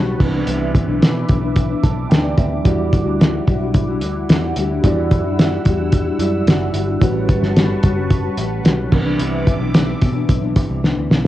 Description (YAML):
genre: indie pop, bedroom pop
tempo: 110 BPM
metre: 4/4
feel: straight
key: E minor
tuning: A4 = 441 Hz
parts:
  - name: mellow tine electric piano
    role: accompaniment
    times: 0.0-11.3 s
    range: E3 to A5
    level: -24 LUFS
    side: right 7 dB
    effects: medium stereo tremolo, cassette tape
  - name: nylon-string guitar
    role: accompaniment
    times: 0.0-11.3 s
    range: A2 to F#4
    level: -23 LUFS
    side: left 7 dB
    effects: lush chorus, vibrato effect, cassette tape
  - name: phased analog pad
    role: sustained chords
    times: 0.0-11.3 s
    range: E4 to E6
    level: -29 LUFS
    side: equal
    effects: phaser, chorus, cassette tape
  - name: vintage muted picked electric bass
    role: bass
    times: 0.0-11.3 s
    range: F#1 to B2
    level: -22 LUFS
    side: equal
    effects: none
  - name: cloth-damped thuddy drum kit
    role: drums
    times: 0.2-11.3 s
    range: crash cymbal, hi-hat, kick drum, snare drum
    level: -15 LUFS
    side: equal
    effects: cassette tape
room: light reverb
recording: home recording on cassette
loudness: -14 LUFS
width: side -14 dB against mid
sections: 0.0-11.3 A section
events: tine electric piano fill 1.6-2.7; drum fill 10.8-11.3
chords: 0.2 Cmaj9; 2.7 Em9; 7.0 A13; 8.9 Cmaj9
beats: | 0.47 1.02 1.57 2.11 | 2.66 3.20 3.75 4.29 | 4.84 5.38 5.93 6.48 | 7.02 7.57 8.11 8.66 | 9.20 9.75 10.29 10.84